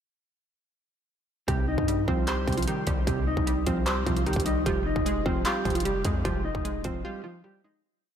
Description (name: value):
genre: hip hop, trap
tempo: 151 BPM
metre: 4/4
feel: half-time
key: C minor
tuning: A4 = 439 Hz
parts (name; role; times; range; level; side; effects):
- mellow electric guitar; melody; 1.5-7.8 s; F3 to Eb5; -29 LUFS; equal; lush chorus, tape echo
- hollow square pluck; accompaniment; 1.5-7.8 s; C3 to C5; -32 LUFS; right 2 dB; chorus
- long sustained 808-style bass; bass; 1.5-7.0 s; Eb1 to G2; -31 LUFS; equal; none
- techno drum kit; drums; 1.5-6.9 s; handclaps, hi-hat, kick drum; -30 LUFS; equal; distortion, overdrive
room: moderate huge ambient reverb, RT60 4.4 s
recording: dreamy mix soaked in reverb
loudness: -24 LUFS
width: side -8 dB against mid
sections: 1.5-7.8 hook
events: fade-out 6.2-7.8; break 7.0-7.8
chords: 1.5 Cm; 4.7 Fmadd9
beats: | 1.48 1.88 2.28 2.67 | 3.07 3.47 3.87 4.26 | 4.66 5.06 5.46 5.85 | 6.25 6.65 7.04 7.44